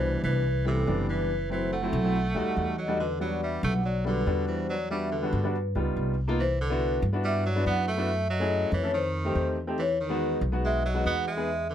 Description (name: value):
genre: jazz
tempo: 142 BPM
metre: 4/4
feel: straight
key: E minor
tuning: A4 = 440 Hz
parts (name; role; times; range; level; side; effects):
- vibraphone with soft mallets; melody; 0.0-11.7 s; A4 to F#5; -31 LUFS; left 1 dB; none
- bright tenor saxophone; second line; 0.0-11.7 s; C3 to B3; -33 LUFS; right 3 dB; slapback echo
- warm upright piano; accompaniment; 0.0-11.5 s; B2 to A4; -31 LUFS; left 1 dB; none
- upright bass; bass; 0.0-11.7 s; F#1 to G2; -29 LUFS; equal; none
room: little or no reverb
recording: close, detailed microphones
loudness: -25 LUFS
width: side -10 dB against mid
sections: 0.0-6.4 A section; 6.4-11.7 B section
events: none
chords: 0.0 Cmaj7; 1.3 F#m7b5; 2.1 B7b13; 3.0 Em9; 5.5 G7alt; 6.4 Cmaj9#11; 8.1 F#m7; 8.9 F9; 9.8 Emaj9